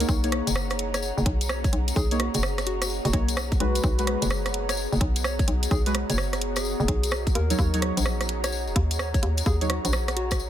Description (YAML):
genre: UK garage, two-step garage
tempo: 128 BPM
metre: 4/4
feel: swing 64% on 16ths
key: unclear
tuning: A4 = 440 Hz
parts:
  - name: soft struck synth lead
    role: melody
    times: 0.0-10.4 s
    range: F#4 to C#5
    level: -35 LUFS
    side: left 2 dB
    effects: chorus, tremolo, dub echo
  - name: ethereal airy pad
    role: sustained chords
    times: 0.0-10.5 s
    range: A#3 to D#5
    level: -38 LUFS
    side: right 1 dB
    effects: ensemble chorus, built-in reverb, sidechain pumping
  - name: deep mellow chord stab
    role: stabs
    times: 0.0-9.7 s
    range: F#3 to C#5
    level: -30 LUFS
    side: equal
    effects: chorus, cassette tape, dub echo
  - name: hollow knocking FM bass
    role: bass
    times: 0.0-10.5 s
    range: D#1 to D#2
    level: -27 LUFS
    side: equal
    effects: none
  - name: garage drum kit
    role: drums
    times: 0.0-10.4 s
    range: hi-hat, rim click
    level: -30 LUFS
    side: right 2 dB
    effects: overdrive, small room reverb
  - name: tambourine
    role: percussion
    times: 0.0-10.5 s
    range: none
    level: -35 LUFS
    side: left 6 dB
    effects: none
  - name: airy breathy pad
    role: texture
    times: 0.0-10.5 s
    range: G#4 to A#5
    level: -35 LUFS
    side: left 1 dB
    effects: chorus, sidechain pumping
  - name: electronic kick drum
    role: drums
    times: 0.1-10.4 s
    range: none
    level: -24 LUFS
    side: equal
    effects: overdrive, small room reverb
room: little or no reverb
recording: dense, heavily limited modern master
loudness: -22 LUFS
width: side -11 dB against mid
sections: 0.0-10.5 A section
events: none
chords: 0.1 Bmaj9; 7.4 D#m7